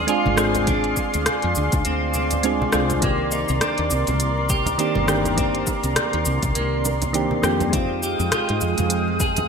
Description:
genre	sunset chillout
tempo	102 BPM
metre	4/4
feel	swing 58% on 16ths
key	C minor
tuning	A4 = 442 Hz
part	soft electric-piano-like synth keys	accompaniment	0.0-9.5 s	Eb3 to D5	-24 LUFS	moving between left 3 dB and right 5 dB	chorus, auto-pan, ping-pong delay
part	lush unison pad	sustained chords	0.0-9.5 s	Ab3 to Eb6	-25 LUFS	right 1 dB	chorus
part	clean electric guitar	arpeggios	0.0-9.5 s	Bb3 to Ab4	-29 LUFS	right 1 dB	wide subtle chorus, ping-pong delay
part	woody fretless electric bass	bass	0.0-9.5 s	G1 to Ab2	-25 LUFS	equal	ensemble chorus
part	smooth R&B drum kit	drums	0.1-9.5 s	hi-hat, rim click, shaker	-25 LUFS	left 1 dB	gated reverb
part	congas and bongos	percussion	0.3-9.5 s	none	-30 LUFS	right 2 dB	none
part	electronic kick drum	drums	0.7-9.3 s	none	-26 LUFS	equal	overdrive
room	moderate lush hall reverb, RT60 1.8 s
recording	bright 1980s-style digital production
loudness	-18 LUFS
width	side -6 dB against mid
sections	0.0-9.5 A section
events	none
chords	0.0 Dm7b5; 3.0 Cm9; 7.7 Fm9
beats	0.09 | 0.68 1.26 1.85 2.44 | 3.03 3.62 4.21 4.79 | 5.38 5.97 6.56 7.15 | 7.73 8.32 8.91

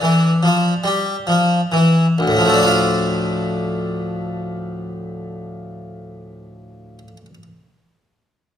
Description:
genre	classical, baroque-style suite movement for harpsichord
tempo	44 BPM (dotted quarters)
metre	6/8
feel	rubato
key	D minor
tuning	A4 = 440 Hz
part	harpsichord	solo	0.0-7.4 s	D2 to F4	-16 LUFS	left 1 dB	none
room	wet recital hall reverb, RT60 1.5 s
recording	none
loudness	-15 LUFS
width	side -10 dB against mid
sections	0.0-2.2 A section; 2.2-7.7 B section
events	slowing down 0.0-2.2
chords	0.0 Dm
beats	0.83 | 2.17 3.54 | 4.92 6.29

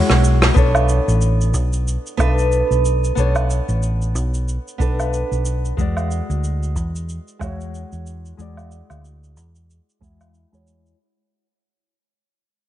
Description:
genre	sunset chillout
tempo	92 BPM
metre	4/4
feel	swing 58% on 16ths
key	B dorian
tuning	A4 = 442 Hz
part	nylon-string guitar	accompaniment	0.0-11.0 s	G#3 to E5	-23 LUFS	moving between left 3 dB and right 4 dB	auto-pan, low-pass filter, tape echo
part	hollow-body short-scale fingered electric bass	bass	0.1-10.9 s	A1 to E2	-19 LUFS	equal	none
part	vintage brush drum kit	drums	0.1-11.0 s	cabasa, hi-hat, rim click, woodblock	-23 LUFS	right 1 dB	none
part	electronic kick drum	drums	0.6-10.2 s	none	-20 LUFS	equal	none
room	light reverb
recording	dark, warm production, nothing above 10.7 kHz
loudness	-16 LUFS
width	side -12 dB against mid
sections	0.6-11.0 A section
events	break 0.0-0.6; drum fill 0.0-0.6; fade-out 0.6-11.0; filter sweep on nylon-string guitar 0.6-11.0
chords	0.0 Eadd9; 0.6 Bm9; 5.8 E9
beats	| 0.56 1.21 1.87 2.52 | 3.17 3.82 4.47 5.13 | 5.78 6.43 7.08 7.74 | 8.39 9.04 9.69 10.34

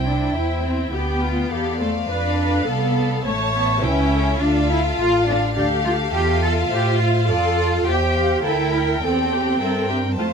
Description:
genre	quick classical-period movement for string orchestra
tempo	104 BPM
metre	4/4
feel	rubato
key	unclear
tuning	A4 = 440 Hz
part	warm chamber violin section	melody	0.0-10.3 s	F5 to A5	-28 LUFS	left 4 dB	none
part	rich chamber violin section	second line	0.0-10.3 s	G4 to G5	-26 LUFS	left 2 dB	none
part	rich symphonic viola section	accompaniment	0.0-10.3 s	E4 to C#5	-24 LUFS	right 1 dB	none
part	rich chamber double bass section	bass	0.0-10.3 s	A1 to A2	-23 LUFS	right 1 dB	none
part	rich symphonic cello section	bass	0.0-10.3 s	A3 to A4	-23 LUFS	right 1 dB	none
room	light reverb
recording	none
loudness	-17 LUFS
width	side -6 dB against mid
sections	0.0-10.3 A section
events	none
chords	0.0 C; 0.9 Dm; 3.3 A7; 4.4 Dm; 7.9 C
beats	0.33 | 0.92 1.50 2.09 2.67 | 3.25 3.83 4.41 4.99 | 5.56 6.14 6.71 7.29 | 7.87 8.44 9.02 9.60 | 10.18

